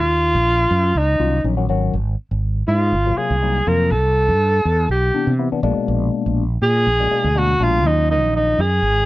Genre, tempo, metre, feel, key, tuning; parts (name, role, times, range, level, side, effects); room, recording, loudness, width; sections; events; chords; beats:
electric jazz fusion; 122 BPM; 4/4; swing 55% on 16ths; A4 = 438 Hz
breathy tenor saxophone; melody; 0.0-9.1 s; Eb4 to Bb4; -18 LUFS; equal; slapback echo
mellow fretless electric bass; bass; 0.0-9.0 s; Ab1 to C3; -19 LUFS; right 1 dB
tine electric piano; accompaniment; 1.2-8.6 s; Cb3 to Gb4; -22 LUFS; left 6 dB; overdrive, phaser
little or no reverb; dry, close 1970s-style studio recording; -15 LUFS; side -17 dB against mid
0.0-9.1 A section
0.0 Ebm9; 1.9 Ab13; 3.9 Cmaj9; 5.6 Bb7b9; 7.8 Ebm9
0.46 0.95 1.44 | 1.93 2.43 2.92 3.41 | 3.90 4.40 4.89 5.38 | 5.87 6.37 6.86 7.35 | 7.84 8.33 8.82